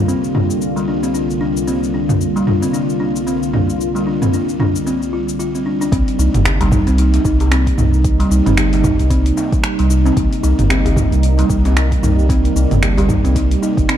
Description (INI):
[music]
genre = organic downtempo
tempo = 113 BPM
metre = 4/4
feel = swing 58% on 16ths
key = C minor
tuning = A4 = 440 Hz
[part]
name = warm analog pad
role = sustained chords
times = 0.0-14.0 s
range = C2 to F4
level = -20 LUFS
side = right 1 dB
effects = chorus, sidechain pumping
[part]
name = buzzing kalimba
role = arpeggios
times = 0.0-14.0 s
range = G3 to F4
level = -19 LUFS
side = left 1 dB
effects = ping-pong delay
[part]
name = deep house drum kit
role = drums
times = 0.1-14.0 s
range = cabasa, finger snaps, hi-hat, toms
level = -20 LUFS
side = right 1 dB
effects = overdrive
[part]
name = warm sub bass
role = bass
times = 5.9-13.8 s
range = G1 to C2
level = -15 LUFS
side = equal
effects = sidechain pumping
[part]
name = electronic kick drum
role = drums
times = 5.9-13.9 s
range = none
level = -18 LUFS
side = equal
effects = overdrive
[part]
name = djembe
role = percussion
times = 6.2-13.7 s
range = none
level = -27 LUFS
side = left 2 dB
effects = none
[sound]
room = light reverb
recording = dark, warm production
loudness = -13 LUFS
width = side -10 dB against mid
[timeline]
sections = 0.0-5.9 A section; 5.9-14.0 B section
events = none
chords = 0.0 Gm7/C; 5.9 Cm7